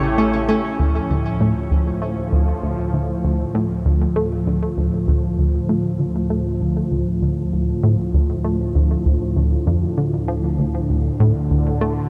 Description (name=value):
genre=ambient, sequencer-driven space music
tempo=98 BPM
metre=4/4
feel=straight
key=D minor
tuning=A4 = 440 Hz
part: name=sweeping resonant pad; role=sustained chords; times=0.0-12.1 s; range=D2 to C#5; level=-23 LUFS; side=equal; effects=chorus
part: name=Celtic harp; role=arpeggios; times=0.0-3.4 s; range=C#4 to C#5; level=-29 LUFS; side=equal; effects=delay
part: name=plucky analog bass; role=riff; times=0.0-11.9 s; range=D2 to A3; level=-22 LUFS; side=equal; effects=subtle chorus, delay
part: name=analog drone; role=bass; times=0.0-0.8 s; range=A1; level=-31 LUFS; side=equal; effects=chorus
room=moderate huge ambient reverb, RT60 9.3 s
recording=in a vast, echoing space, cassette tape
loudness=-20 LUFS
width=mono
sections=0.8-12.1 A section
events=none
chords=0.0 A7; 0.8 Dm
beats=0.18 | 0.79 1.40 2.02 2.63 | 3.24 3.85 4.46 5.08 | 5.69 6.30 6.91 7.53 | 8.14 8.75 9.36 9.97 | 10.59 11.20 11.81